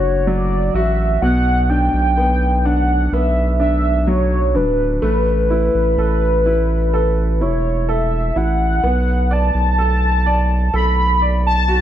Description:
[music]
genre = pop ballad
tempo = 63 BPM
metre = 4/4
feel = straight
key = unclear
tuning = A4 = 440 Hz
[part]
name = warm velvety synth lead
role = melody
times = 0.0-11.8 s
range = B4 to B5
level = -19 LUFS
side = equal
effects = chorus, slapback echo
[part]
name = clear grand piano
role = accompaniment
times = 0.0-11.8 s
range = B2 to D5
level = -22 LUFS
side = right 1 dB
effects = none
[part]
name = saturated sub bass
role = bass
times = 0.0-11.8 s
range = D1 to B1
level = -17 LUFS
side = equal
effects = none
[sound]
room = studio ambience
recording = dry, close 1970s-style studio recording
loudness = -14 LUFS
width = side -11 dB against mid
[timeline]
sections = 0.0-11.8 A section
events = none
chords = 0.0 Bm; 1.2 Gmaj7/B; 5.0 A5; 8.8 Bm7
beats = 0.26 | 1.22 2.17 3.12 4.07 | 5.03 5.98 6.93 7.88 | 8.84 9.79 10.74 11.69

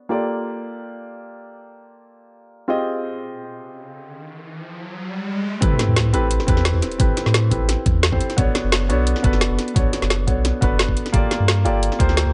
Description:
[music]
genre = liquid drum and bass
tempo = 174 BPM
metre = 4/4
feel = straight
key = unclear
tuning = A4 = 440 Hz
[part]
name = warm concert grand piano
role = accompaniment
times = 0.0-12.3 s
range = Bb3 to Eb5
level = -26 LUFS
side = equal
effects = dub echo
[part]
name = riser and sub drop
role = sound effects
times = 4.1-7.0 s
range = none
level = -30 LUFS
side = equal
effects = none
[part]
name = sub bass with octave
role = bass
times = 5.6-12.3 s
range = F#1 to A2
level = -22 LUFS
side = equal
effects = none
[part]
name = drum and bass drum kit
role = drums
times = 5.6-12.2 s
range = hi-hat, snare drum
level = -25 LUFS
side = equal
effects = low-pass filter on hats, low-pass filter on snare, low-pass filter on room
[part]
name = electronic kick drum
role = drums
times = 5.6-12.1 s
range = none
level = -22 LUFS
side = equal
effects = overdrive
[sound]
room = digital ambience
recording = nothing above 10.9 kHz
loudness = -19 LUFS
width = mono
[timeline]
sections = 0.0-5.6 A section; 5.6-12.3 B section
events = riser 4.1-5.6; drop 5.6-12.3; impact 5.6-7.0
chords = 0.1 Gm9; 2.7 Fm9; 5.6 Am9; 8.4 Bm9; 11.1 Gm9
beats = | 0.10 0.45 0.79 1.14 | 1.48 1.83 2.17 2.52 | 2.86 3.21 3.55 3.90 | 4.24 4.59 4.93 5.28 | 5.62 5.96 6.31 6.66 | 7.00 7.34 7.69 8.03 | 8.38 8.72 9.07 9.41 | 9.76 10.10 10.45 10.79 | 11.14 11.48 11.83 12.17

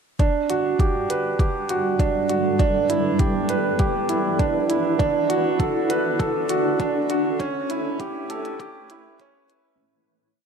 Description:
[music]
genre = piano and strings electronica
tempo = 100 BPM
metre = 4/4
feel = straight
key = unclear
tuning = A4 = 440 Hz
[part]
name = granular cloud pad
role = sustained chords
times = 1.3-9.8 s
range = G3 to G5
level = -26 LUFS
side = left 1 dB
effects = built-in reverb, sidechain pumping
[part]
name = felt-muted upright piano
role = riff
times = 0.2-9.8 s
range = C#4 to B4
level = -22 LUFS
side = right 3 dB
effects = tape echo
[part]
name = electronic hi-hat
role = drums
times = 0.2-9.6 s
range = none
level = -36 LUFS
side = right 1 dB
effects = none
[part]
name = electronic kick drum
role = drums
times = 0.2-9.3 s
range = none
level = -22 LUFS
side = equal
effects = none
[part]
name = warm sub bass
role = bass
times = 0.5-9.7 s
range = D1 to A2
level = -43 LUFS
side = equal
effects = none
[sound]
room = moderate lush hall reverb, RT60 1.7 s, digital ambience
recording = high-pass filter, lossy compression artefacts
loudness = -20 LUFS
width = side -6 dB against mid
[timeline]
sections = 0.2-9.8 build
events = build-up 0.2-9.8; filter sweep on ambient pad 0.2-9.8; fade-out 6.6-9.8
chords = 0.2 Gmaj7; 2.6 Em7; 5.0 D6; 7.4 A7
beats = | 0.20 0.80 1.40 2.00 | 2.60 3.20 3.80 4.40 | 5.00 5.60 6.20 6.80 | 7.40 8.00 8.60 9.20

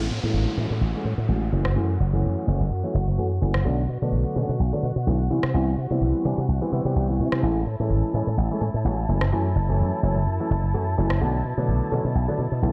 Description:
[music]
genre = filtered disco house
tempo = 127 BPM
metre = 4/4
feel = swing 55% on 16ths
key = unclear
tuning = A4 = 439 Hz
[part]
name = dark chamber violin section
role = sustained chords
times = 0.0-12.7 s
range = E4 to A5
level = -37 LUFS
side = equal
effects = low-pass filter
[part]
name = slap bass with an envelope filter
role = bass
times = 0.0-12.7 s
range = F#1 to C3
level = -25 LUFS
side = equal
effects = low-pass filter
[part]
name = downlifter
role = sound effects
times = 0.0-3.6 s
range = none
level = -38 LUFS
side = equal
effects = none
[part]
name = dark baby grand piano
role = accompaniment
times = 0.2-12.7 s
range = D3 to G4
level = -29 LUFS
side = equal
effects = phaser, low-pass filter
[part]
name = electronic rim click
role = drums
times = 1.6-11.2 s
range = none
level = -34 LUFS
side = equal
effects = none
[sound]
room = little or no reverb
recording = dark, warm production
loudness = -24 LUFS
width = mono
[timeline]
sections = 0.0-12.7 A section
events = filter sweep 0.0-12.7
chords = 0.0 Amaj7; 1.5 F#m7; 3.7 Bm7; 5.3 Cmaj7; 7.4 Amaj7; 9.1 F#m7; 11.2 Bm7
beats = 0.34 0.82 1.29 | 1.76 2.23 2.71 3.18 | 3.65 4.12 4.60 5.07 | 5.54 6.01 6.49 6.96 | 7.43 7.90 8.38 8.85 | 9.32 9.79 10.27 10.74 | 11.21 11.68 12.15 12.63

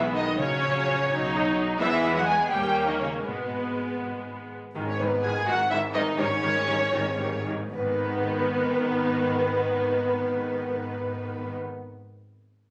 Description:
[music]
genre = quick classical-period movement for string orchestra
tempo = 73-87 BPM (dotted quarters)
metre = 6/8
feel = rubato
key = G# minor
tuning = A4 = 441 Hz
[part]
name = muted studio violin section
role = second line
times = 0.0-11.5 s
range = B3 to G#4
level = -36 LUFS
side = equal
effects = none
[part]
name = muted symphonic viola section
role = accompaniment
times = 0.0-11.5 s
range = D#3 to D#4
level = -32 LUFS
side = equal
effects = none
[part]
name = muted symphonic cello section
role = bass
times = 0.0-11.5 s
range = G#2 to G#3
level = -35 LUFS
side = equal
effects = none
[part]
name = muted symphonic double bass section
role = bass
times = 0.0-11.5 s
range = G#1 to E2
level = -38 LUFS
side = equal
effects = none
[part]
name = muted symphonic violin section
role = melody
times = 0.2-11.5 s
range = B4 to G#5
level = -30 LUFS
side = equal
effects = none
[sound]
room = wet stone room reverb, RT60 0.9 s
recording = recorded on a phone in the room, club reverb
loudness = -26 LUFS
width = mono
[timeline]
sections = 0.0-4.8 A section; 4.8-7.7 B section; 7.7-10.8 C section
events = slowing down 4.0-7.7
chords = 0.4 F#/A#; 1.1 B; 1.8 E; 2.5 D#7; 3.2 G#m; 4.8 G#5; 6.2 D#7/G#; 7.7 G#m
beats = | 0.39 1.10 | 1.79 2.50 | 3.24 4.00 | 4.76 5.48 | 6.18 6.93 | 7.72 8.48 | 9.24 10.00

